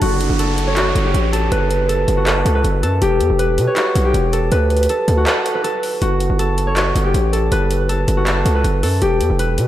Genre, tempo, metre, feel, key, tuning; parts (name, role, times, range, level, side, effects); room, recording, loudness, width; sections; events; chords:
hip hop, trap; 160 BPM; 4/4; half-time; F# phrygian; A4 = 440 Hz
concert harp; melody; 0.0-9.7 s; F#4 to B5; -18 LUFS; equal; low-pass filter, analog delay
distorted 808-style bass; bass; 0.0-9.7 s; E1 to B2; -17 LUFS; equal; distortion
trap drum kit; drums; 0.0-9.7 s; handclaps, hi-hat; -23 LUFS; equal
downlifter; sound effects; 0.0-3.0 s; -29 LUFS; right 2 dB
moderate plate reverb, RT60 2.0 s, digital ambience; dreamy mix soaked in reverb; -14 LUFS; side -13 dB against mid
0.0-9.7 A section
break 5.3-6.0
0.0 F#m; 3.0 Em; 4.5 D5; 6.0 F#m; 9.0 Em